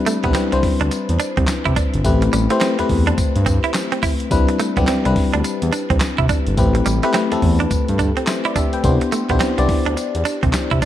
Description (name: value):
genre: R&B, new jack swing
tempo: 106 BPM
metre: 4/4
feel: swing 62% on 16ths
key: C major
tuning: A4 = 439 Hz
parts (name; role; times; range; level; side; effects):
- FM electric piano; accompaniment; 0.0-10.9 s; G3 to G5; -20 LUFS; left 4 dB; chorus
- direct-recorded clean electric guitar; riff; 0.1-10.9 s; G3 to E4; -24 LUFS; right 7 dB; lush chorus
- dusty soul sampler-style drum kit; drums; 0.1-10.9 s; handclaps, hi-hat, kick drum, snare drum, tambourine; -21 LUFS; equal; none
- smooth synth bass; bass; 0.2-10.8 s; G1 to C3; -19 LUFS; equal; none
room: light reverb, digital ambience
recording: none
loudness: -15 LUFS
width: side -12 dB against mid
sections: 0.0-10.9 A section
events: none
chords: 0.0 Cmaj9; 2.0 Am9; 4.3 Cmaj9; 6.6 Am9; 8.8 Cmaj9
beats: 0.35 0.91 1.48 | 2.05 2.61 3.18 3.74 | 4.31 4.88 5.44 6.01 | 6.57 7.14 7.71 8.27 | 8.84 9.40 9.97 10.54